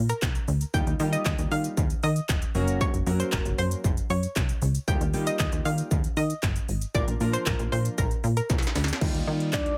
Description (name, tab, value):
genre	dance-pop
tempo	116 BPM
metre	4/4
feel	straight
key	Eb major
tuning	A4 = 440 Hz
part	plucky analog bass	bass	0.0-9.7 s	Eb1 to Eb3	-29 LUFS	equal	sidechain pumping
part	analog pluck	melody	0.1-8.5 s	Bb4 to G5	-34 LUFS	equal	chorus, delay
part	industrial drum kit	drums	0.1-9.8 s	crash cymbal, handclaps, hi-hat, kick drum, shaker, snare drum	-30 LUFS	equal	distortion
part	chorused retro synth keys	accompaniment	0.7-9.8 s	F3 to Bb4	-34 LUFS	equal	sidechain pumping
part	downlifter	sound effects	9.0-9.8 s	none	-43 LUFS	equal	none
part	soft octave-layered synth lead	melody	9.5-9.8 s	D5	-30 LUFS	equal	chorus, phaser
room	little or no reverb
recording	none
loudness	-26 LUFS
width	mono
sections	0.0-9.0 A section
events	drop 0.0-9.0; drum fill 8.5-9.0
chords	0.0 Bb; 0.7 Ebadd9; 2.5 Gb; 4.9 Ebadd9; 6.9 Bb; 9.0 Ebadd9